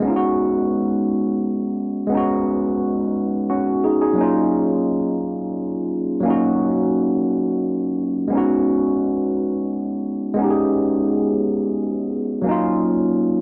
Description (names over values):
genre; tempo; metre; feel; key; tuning
R&B; 58 BPM (dotted quarters); 6/8; straight; unclear; A4 = 440 Hz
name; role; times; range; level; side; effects
overdriven tine electric piano; solo; 0.0-13.4 s; Gb3 to Ab4; -20 LUFS; equal; lush chorus
room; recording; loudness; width
light reverb; worn, warbling old tape, cassette tape, warbly pitch drift; -20 LUFS; mono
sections
0.0-12.4 A section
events
none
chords
0.0 Db9sus4; 4.2 Ebm9; 8.3 Db9sus4; 12.4 Ebm9